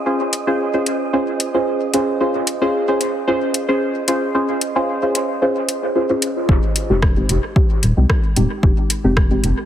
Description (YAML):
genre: dub techno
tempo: 112 BPM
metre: 4/4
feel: swing 53% on 16ths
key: F minor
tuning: A4 = 436 Hz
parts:
  - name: wind-like tuned noise texture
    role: texture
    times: 0.0-6.5 s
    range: Eb5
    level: -30 LUFS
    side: right 5 dB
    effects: built-in reverb, sidechain pumping
  - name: deep mellow chord stab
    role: stabs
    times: 0.1-9.5 s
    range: Ab3 to C5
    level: -18 LUFS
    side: equal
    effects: chorus, phaser, sidechain pumping, dub echo
  - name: deep house drum kit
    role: drums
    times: 0.3-9.6 s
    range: hi-hat, rim click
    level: -22 LUFS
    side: left 1 dB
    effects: overdrive, dub echo
  - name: round analog bass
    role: bass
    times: 6.5-9.5 s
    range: Eb1 to C2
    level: -17 LUFS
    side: equal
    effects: sidechain pumping
  - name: electronic kick drum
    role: drums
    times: 6.5-9.3 s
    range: none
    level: -16 LUFS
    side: equal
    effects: overdrive
room: moderate echo chamber reverb, RT60 1.9 s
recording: heavily compressed radio sound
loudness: -16 LUFS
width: side -11 dB against mid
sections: 0.0-6.5 A section; 6.5-9.7 B section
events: none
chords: 0.0 Dbmaj9; 6.5 Fm9